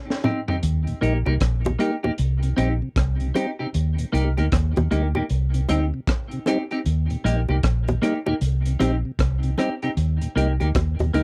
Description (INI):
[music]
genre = roots reggae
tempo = 77 BPM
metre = 4/4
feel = swing 63% on 16ths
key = Eb major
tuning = A4 = 442 Hz
[part]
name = crunchy breakbeat drum kit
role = drums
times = 0.1-11.2 s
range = hi-hat, kick drum, rim click, snare drum, toms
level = -28 LUFS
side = equal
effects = none
[part]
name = clean electric guitar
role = accompaniment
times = 0.2-11.2 s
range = Bb3 to G4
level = -28 LUFS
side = equal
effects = lush chorus, tape echo
[part]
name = bongos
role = percussion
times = 0.2-11.2 s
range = none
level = -30 LUFS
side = equal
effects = none
[part]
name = vintage muted fingered electric bass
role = bass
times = 0.6-11.2 s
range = Bb1 to Eb2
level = -24 LUFS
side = equal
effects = none
[part]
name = mellow tonewheel organ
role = accompaniment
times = 0.9-11.2 s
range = Eb2 to Eb4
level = -29 LUFS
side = equal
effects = slow rotary speaker
[sound]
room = little or no reverb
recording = dry, close 1970s-style studio recording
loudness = -23 LUFS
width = mono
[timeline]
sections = 0.0-11.2 A section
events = drum fill 0.0-0.6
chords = 0.0 Cm; 0.6 Eb; 5.3 Cm; 6.9 Eb